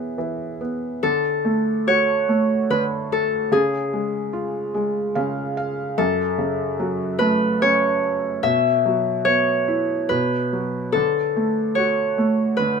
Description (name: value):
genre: children's music, lullaby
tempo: 73 BPM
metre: 3/4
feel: rubato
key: unclear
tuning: A4 = 440 Hz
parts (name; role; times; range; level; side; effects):
- Celtic harp; melody; 0.0-12.8 s; G#4 to E5; -21 LUFS; left 1 dB; none
- felt-muted upright piano; accompaniment; 0.0-12.8 s; F#2 to E#5; -23 LUFS; right 2 dB; none
room: moderate small room ambience, RT60 0.5 s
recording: minimal, uncompressed stereo recording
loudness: -19 LUFS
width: side -6 dB against mid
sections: 0.0-1.0 A section; 1.0-12.8 B section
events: felt piano fill 4.7-6.0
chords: 0.0 E; 1.0 D; 3.5 C#; 6.0 F#m; 8.4 Bsus4; 10.1 B5; 10.9 D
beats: 0.17 | 1.02 1.86 2.69 | 3.52 4.33 5.16 | 5.98 6.79 7.61 | 8.44 9.26 10.10 | 10.95 11.77 12.60